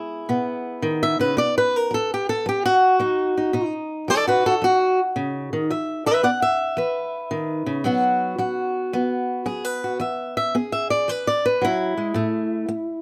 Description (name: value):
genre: acoustic country blues, solo or duo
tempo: 111 BPM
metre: 4/4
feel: swing 67% on 8ths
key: E major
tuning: A4 = 441 Hz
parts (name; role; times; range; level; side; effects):
- fingerpicked swing-style acoustic guitar; solo; 0.0-13.0 s; A2 to F#5; -22 LUFS; equal; none
room: light reverb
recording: none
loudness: -22 LUFS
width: mono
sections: 0.0-10.0 A section; 10.0-13.0 A section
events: steel-string acoustic guitar solo 0.0-10.0, 10.0-13.0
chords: 0.0 E; 1.4 B; 5.7 E5; 7.8 B5; 10.0 E; 12.2 A5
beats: 0.29 0.83 | 1.37 1.91 2.45 3.00 | 3.54 4.08 4.62 5.16 | 5.69 6.23 6.77 7.31 | 7.85 8.39 8.93 9.46 | 10.00 10.54 11.08 11.62 | 12.16 12.70